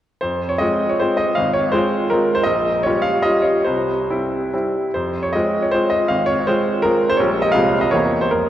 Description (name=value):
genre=classical, romantic triple-time dance for piano with dotted rhythms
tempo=134-173 BPM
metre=3/4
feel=rubato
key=F minor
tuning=A4 = 440 Hz
part: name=bright grand piano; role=solo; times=0.2-8.5 s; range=Ab1 to F5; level=-16 LUFS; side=equal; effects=none
room=wet church reverb, RT60 2.9 s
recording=worn, warbling old tape, cassette tape, warbly pitch drift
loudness=-16 LUFS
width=side -11 dB against mid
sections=0.2-8.5 A section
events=none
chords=0.2 Fm; 1.4 Fm/Ab; 2.5 Gm7b5/Bb; 3.7 C; 4.9 Fm; 6.1 Fm/Ab; 7.2 Gm7b5/Bb; 7.6 Fm/C; 8.0 C7/E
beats=| 0.23 0.62 1.01 | 1.37 1.74 2.12 | 2.48 2.87 3.26 | 3.67 4.10 4.53 | 4.94 5.34 5.73 | 6.09 6.47 6.84 | 7.20 7.56 7.95 | 8.37